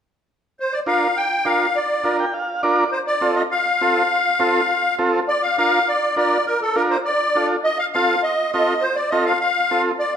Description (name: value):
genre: latin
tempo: 204 BPM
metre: 4/4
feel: straight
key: Bb major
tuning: A4 = 443 Hz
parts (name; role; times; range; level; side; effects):
- musette accordion; melody; 0.6-10.2 s; A4 to G5; -18 LUFS; left 1 dB; none
- combo organ; accompaniment; 0.9-9.9 s; C4 to G5; -21 LUFS; right 2 dB; none
room: wet large studio reverb, RT60 1.4 s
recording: band playing live in one room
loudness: -17 LUFS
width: side -8 dB against mid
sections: 0.6-5.3 A section; 5.3-10.2 B section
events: transistor combo organ fill 2.1-2.9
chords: 0.6 Bb; 2.9 F; 5.3 Bb; 7.6 F7